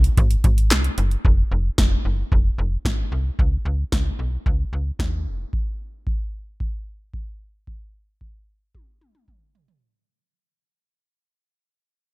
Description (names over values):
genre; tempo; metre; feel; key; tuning
synth-pop; 112 BPM; 4/4; straight; unclear; A4 = 442 Hz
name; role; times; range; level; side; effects
slap-like FM bass; bass; 0.0-5.5 s; F1 to Eb2; -22 LUFS; equal; none
electro analog drum machine; drums; 0.0-9.8 s; handclaps, hi-hat, kick drum, snare drum, toms; -21 LUFS; equal; none
room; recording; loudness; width
little or no reverb; none; -20 LUFS; side -23 dB against mid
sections
0.0-1.2 A section; 1.2-9.8 B section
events
fade-out 1.2-9.8; drum fill 8.7-9.8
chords
none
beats
0.17 0.71 | 1.25 1.78 2.32 2.85 | 3.39 3.92 4.46 5.00 | 5.53 6.07 6.60 7.14 | 7.67 8.21 8.75 9.28